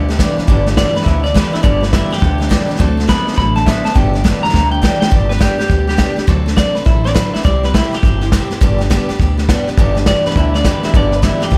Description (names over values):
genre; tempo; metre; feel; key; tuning
rockabilly; 206 BPM; 4/4; swing 64% on 8ths; G major; A4 = 438 Hz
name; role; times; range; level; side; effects
picked steel-string acoustic guitar; accompaniment; 0.0-11.6 s; G2 to A4; -22 LUFS; equal; none
electric guitar through a small old amp; riff; 0.0-5.1, 9.8-11.6 s; G2 to B3; -24 LUFS; equal; none
upright bass; bass; 0.0-11.6 s; G1 to D2; -20 LUFS; equal; none
soft brush drum kit; drums; 0.1-11.6 s; hi-hat, kick drum, snare drum; -18 LUFS; equal; none
electric guitar through a small old amp; melody; 0.8-11.6 s; E4 to B5; -22 LUFS; equal; tape echo
room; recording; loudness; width
little or no reverb; none; -14 LUFS; mono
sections
0.0-5.1 A section; 5.1-11.6 A section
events
drum fill 4.5-5.1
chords
0.0 G; 2.8 D7; 4.0 G; 6.3 D7; 7.5 C; 8.6 G